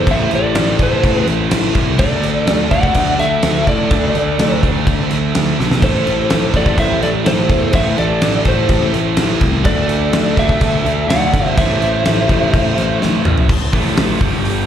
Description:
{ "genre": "hard rock", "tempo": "125 BPM", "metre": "4/4", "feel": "straight", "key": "A minor", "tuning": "A4 = 441 Hz", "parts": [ { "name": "lightly driven lead guitar", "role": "melody", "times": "0.0-13.0 s", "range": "C5 to F#5", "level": "-19 LUFS", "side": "equal", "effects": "slapback echo, analog delay" }, { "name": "fuzz lead guitar", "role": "second line", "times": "0.0-13.0 s", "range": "A4 to D5", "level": "-25 LUFS", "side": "right 2 dB", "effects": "distortion, slapback echo" }, { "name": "percussive tonewheel organ", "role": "sustained chords", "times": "0.0-14.7 s", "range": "A3 to A5", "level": "-28 LUFS", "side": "equal", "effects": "slow rotary speaker" }, { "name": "overdriven semi-hollow guitar", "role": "riff", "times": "0.0-14.7 s", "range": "G2 to D4", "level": "-23 LUFS", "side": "left 12 dB", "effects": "none" }, { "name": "scooped high-gain guitar", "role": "riff", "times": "0.0-14.7 s", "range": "G2 to D4", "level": "-22 LUFS", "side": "right 11 dB", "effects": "distortion, slapback echo" }, { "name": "fuzz picked electric bass", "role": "bass", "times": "0.0-14.7 s", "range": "G1 to A2", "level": "-19 LUFS", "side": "equal", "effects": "overdrive" }, { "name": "gated 80s drum kit", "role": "drums", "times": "0.1-14.6 s", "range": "crash cymbal, hi-hat, kick drum, snare drum, toms", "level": "-17 LUFS", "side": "equal", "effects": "none" } ], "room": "light reverb, small room reverb", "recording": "live gig heard through the venue's PA, club reverb", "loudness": "-12 LUFS", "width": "side -9 dB against mid", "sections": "0.0-13.5 A section; 13.5-14.7 B section", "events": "drum fill 5.6, 13.0-13.5", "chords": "0.0 Am; 2.0 D5; 5.8 Am; 9.7 D; 11.6 Am" }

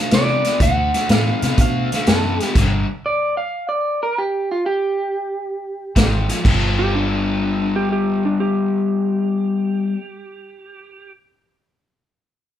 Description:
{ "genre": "electric blues shuffle", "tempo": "123 BPM", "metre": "4/4", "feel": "swing 68% on 8ths", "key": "G mixolydian", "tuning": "A4 = 442 Hz", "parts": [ { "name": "electric guitar through a small old amp", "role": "melody", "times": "0.0-6.1 s", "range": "F4 to F#5", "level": "-21 LUFS", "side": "right 2 dB", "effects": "none" }, { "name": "raw garage guitar", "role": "riff", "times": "0.0-2.9, 6.0-10.0 s", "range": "G2 to A4", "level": "-20 LUFS", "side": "left 3 dB", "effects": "overdrive" }, { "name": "vintage muted fingered electric bass", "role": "bass", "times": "0.1-2.8, 6.0-9.5 s", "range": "G1 to C3", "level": "-22 LUFS", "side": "right 1 dB", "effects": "none" }, { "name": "vintage drum kit", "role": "drums", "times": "0.1-2.7, 6.0-6.6 s", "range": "crash cymbal, hi-hat, kick drum, snare drum", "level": "-18 LUFS", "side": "equal", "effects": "none" }, { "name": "electric slide guitar", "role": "second line", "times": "6.8-11.1 s", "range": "D4 to G4", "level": "-25 LUFS", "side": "right 3 dB", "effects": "none" } ], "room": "light reverb", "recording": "band playing live in one room", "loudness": "-17 LUFS", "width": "side -10 dB against mid", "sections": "0.0-6.5 A section; 6.5-10.4 B section", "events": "stop 2.6-6.0", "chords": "0.0 D7; 2.6 G5; 6.0 Ab5; 6.5 G9" }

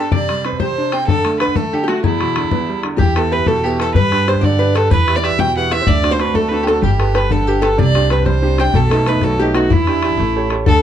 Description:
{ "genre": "celtic folk, Celtic jig", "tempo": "125 BPM (dotted quarters)", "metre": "6/8", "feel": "straight", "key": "E minor", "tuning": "A4 = 441 Hz", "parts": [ { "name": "rich fiddle", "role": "melody", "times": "0.0-10.8 s", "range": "E4 to G5", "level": "-19 LUFS", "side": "right 1 dB", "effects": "none" }, { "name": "archtop guitar, miked and amplified", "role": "second line", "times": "0.0-10.8 s", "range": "E4 to G5", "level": "-22 LUFS", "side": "left 3 dB", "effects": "none" }, { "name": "bright upright piano", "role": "accompaniment", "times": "0.0-10.8 s", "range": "E2 to C#5", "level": "-20 LUFS", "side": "right 4 dB", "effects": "none" }, { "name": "bodhran", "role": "percussion", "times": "0.1-10.8 s", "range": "none", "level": "-20 LUFS", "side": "left 5 dB", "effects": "none" }, { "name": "upright bass", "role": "bass", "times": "3.0-10.8 s", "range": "G1 to G2", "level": "-18 LUFS", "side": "equal", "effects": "none" } ], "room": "moderate small room reverb, RT60 0.5 s", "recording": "dark, warm production", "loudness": "-13 LUFS", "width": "side -10 dB against mid", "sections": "0.0-3.0 A section; 3.0-10.7 A section", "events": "none", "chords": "0.1 Csus2; 1.1 D5; 2.0 Em7; 3.0 Em; 4.0 G; 4.9 Em; 5.9 D7; 6.8 Gadd9; 7.8 Csus2; 8.7 B7; 9.7 Em7; 10.2 A7" }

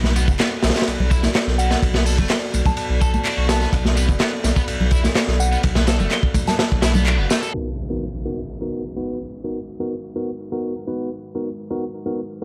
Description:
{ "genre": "breakbeat, breaks", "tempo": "126 BPM", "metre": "4/4", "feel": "straight", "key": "unclear", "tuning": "A4 = 440 Hz", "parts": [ { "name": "dark analog pad", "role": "sustained chords", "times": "0.0-12.4 s", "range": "G#3 to D5", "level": "-33 LUFS", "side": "equal", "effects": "chorus, sidechain pumping" }, { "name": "saturated sub bass", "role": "bass", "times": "0.0-7.3 s", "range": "F#1 to B1", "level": "-22 LUFS", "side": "equal", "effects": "none" }, { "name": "crunchy breakbeat drum kit", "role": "drums", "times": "0.0-7.5 s", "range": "hi-hat, kick drum, ride cymbal, snare drum", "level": "-22 LUFS", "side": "equal", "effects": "none" }, { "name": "congas", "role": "percussion", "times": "0.0-7.0 s", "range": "none", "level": "-29 LUFS", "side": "equal", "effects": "none" }, { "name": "heavy high-gain guitar", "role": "riff", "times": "0.2-7.5 s", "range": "A3 to A4", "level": "-32 LUFS", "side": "equal", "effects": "distortion, vintage 12-bit sampler grit, tape echo" }, { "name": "electronic tambourine and handclaps", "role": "drums", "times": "0.2-7.5 s", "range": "none", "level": "-31 LUFS", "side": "equal", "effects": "low-pass filter on perc, low-pass filter on snare" }, { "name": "soft struck synth lead", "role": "melody", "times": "1.6-6.7 s", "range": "F#5 to A5", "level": "-30 LUFS", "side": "equal", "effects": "chorus, tremolo, old record sound, tape echo" }, { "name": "tine electric piano", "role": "stabs", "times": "7.5-12.4 s", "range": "B3 to B4", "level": "-28 LUFS", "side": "equal", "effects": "tape echo" }, { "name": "impact", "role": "sound effects", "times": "7.5-9.4 s", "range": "none", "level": "-34 LUFS", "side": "equal", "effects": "none" } ], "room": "little or no reverb", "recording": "vinyl crackle, low-pass filter", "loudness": "-21 LUFS", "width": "mono", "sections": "0.0-7.5 A section; 7.5-12.4 B section", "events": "band accent 7.1; impact 7.5-9.4; filter sweep on analog synth pad 7.5-12.4; filter sweep 7.5-12.4", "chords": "0.0 Bm7; 7.5 G#m7" }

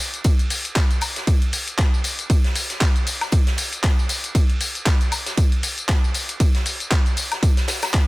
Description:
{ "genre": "house", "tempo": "117 BPM", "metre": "4/4", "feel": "swing 57% on 16ths", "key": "none", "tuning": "none", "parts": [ { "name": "dusty soul sampler-style drum kit", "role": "drums", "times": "0.0-8.1 s", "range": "handclaps, hi-hat, ride cymbal, tambourine, woodblock", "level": "-24 LUFS", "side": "left 1 dB", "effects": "none" }, { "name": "electronic kick drum", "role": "drums", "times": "0.2-8.1 s", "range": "none", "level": "-18 LUFS", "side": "equal", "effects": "none" }, { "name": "tambourine and snare drum", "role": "drums", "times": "0.2-8.1 s", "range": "none", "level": "-32 LUFS", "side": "right 1 dB", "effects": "high-pass filter on snare, sidechain pumping on perc, high-pass filter on perc, high-pass filter on room" } ], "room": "studio ambience", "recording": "dense, heavily limited modern master", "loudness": "-18 LUFS", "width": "side -21 dB against mid", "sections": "0.0-8.1 A section", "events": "none", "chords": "none" }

